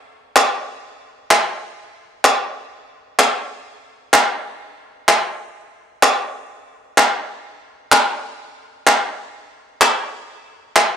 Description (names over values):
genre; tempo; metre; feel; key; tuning
pop; 127 BPM; 4/4; straight; none; none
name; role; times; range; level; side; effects
group handclap; percussion; 0.4-10.9 s; none; -13 LUFS; equal; none
room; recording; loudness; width
light reverb, small room ambience; dry, close 1970s-style studio recording; -15 LUFS; side -8 dB against mid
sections
0.0-11.0 A section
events
none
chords
none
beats
0.36 0.84 1.31 | 1.78 2.25 2.73 3.20 | 3.67 4.14 4.62 5.09 | 5.56 6.04 6.51 6.98 | 7.46 7.93 8.40 8.87 | 9.35 9.82 10.29 10.77